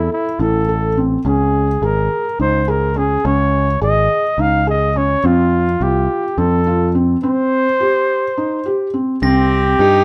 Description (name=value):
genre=contemporary instrumental, chamber music in an uneven meter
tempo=210 BPM (eighths)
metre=7/8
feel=straight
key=unclear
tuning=A4 = 440 Hz
part: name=warm flugelhorn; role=melody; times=0.0-10.0 s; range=E4 to F5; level=-20 LUFS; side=equal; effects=none
part: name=felt-muted upright piano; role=arpeggios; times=0.0-10.0 s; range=C4 to A4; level=-21 LUFS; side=equal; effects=none
part: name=overdriven picked electric bass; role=bass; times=0.0-10.0 s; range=Ab1 to G2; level=-21 LUFS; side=equal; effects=none
part: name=rich cello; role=second line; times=9.2-10.0 s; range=C4 to Eb4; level=-22 LUFS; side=equal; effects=none
part: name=glockenspiel with brass mallets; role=texture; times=9.2-10.0 s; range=Bb6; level=-28 LUFS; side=equal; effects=none
room=light reverb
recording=close, detailed microphones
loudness=-16 LUFS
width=mono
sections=0.0-9.2 A section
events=none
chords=0.0 Am; 1.2 Dbsus2; 5.2 F; 7.2 Cm